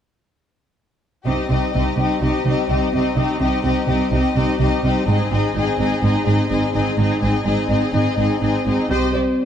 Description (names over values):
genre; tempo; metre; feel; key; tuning
cinematic; 126 BPM; 4/4; straight; C minor; A4 = 435 Hz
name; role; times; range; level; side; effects
warm symphonic violin section; second line; 1.3-9.2 s; G4 to Eb5; -23 LUFS; left 5 dB; none
warm symphonic viola section; accompaniment; 1.3-9.2 s; C4 to C5; -21 LUFS; equal; none
rich symphonic double bass section; bass; 1.3-9.1 s; Ab1 to C2; -23 LUFS; right 2 dB; none
warm symphonic cello section; bass; 1.3-9.2 s; Ab2 to C3; -23 LUFS; right 2 dB; none
dark French horn section; sustained chords; 8.9-9.4 s; C4; -20 LUFS; left 1 dB; none
room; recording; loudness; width
wet scoring stage reverb, RT60 1.8 s; dark, warm production; -16 LUFS; side -9 dB against mid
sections
1.3-8.9 A section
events
none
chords
1.3 Cm; 5.1 Ab; 8.9 Cm